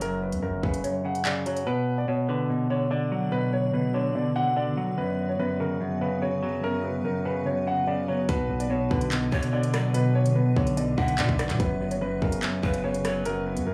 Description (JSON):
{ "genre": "hip hop, drill", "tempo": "145 BPM", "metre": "4/4", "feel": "half-time", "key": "B minor", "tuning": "A4 = 441 Hz", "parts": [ { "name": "dark concert grand piano", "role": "melody", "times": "0.0-13.7 s", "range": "A#4 to F#5", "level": "-32 LUFS", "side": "equal", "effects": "analog delay" }, { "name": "semi-hollow electric guitar", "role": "accompaniment", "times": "0.0-13.7 s", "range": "F#2 to F#3", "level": "-30 LUFS", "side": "equal", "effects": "none" }, { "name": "long sustained 808-style bass", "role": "bass", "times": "0.0-0.8, 8.3-13.7 s", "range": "F#1 to B2", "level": "-32 LUFS", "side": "equal", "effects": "none" }, { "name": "drill drum kit", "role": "drums", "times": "0.0-1.7, 8.3-13.7 s", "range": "handclaps, hi-hat, kick drum, rim click", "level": "-31 LUFS", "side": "equal", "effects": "none" }, { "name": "granular cloud pad", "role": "sustained chords", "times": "2.7-13.7 s", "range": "C#3 to D5", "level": "-38 LUFS", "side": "equal", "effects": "built-in reverb" }, { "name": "breathy large pan pipes", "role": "second line", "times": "9.3-13.2 s", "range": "B4 to E5", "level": "-40 LUFS", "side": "equal", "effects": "analog delay" } ], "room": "little or no reverb", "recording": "dry, gritty hardware recording, studio ambience", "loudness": "-26 LUFS", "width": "mono", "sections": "0.0-1.7 A section; 1.7-13.7 B section", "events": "kick muted 0.8-1.7", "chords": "0.0 F#5; 1.7 Bm; 5.0 F#sus4; 8.3 Bmadd9; 11.6 F#sus4", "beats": "| 0.01 0.43 0.84 1.25 | 1.67 2.08 2.50 2.91 | 3.32 3.74 4.15 4.57 | 4.98 5.39 5.81 6.22 | 6.63 7.05 7.46 7.88 | 8.29 8.70 9.12 9.53 | 9.94 10.36 10.77 11.19 | 11.60 12.01 12.43 12.84 | 13.25 13.67" }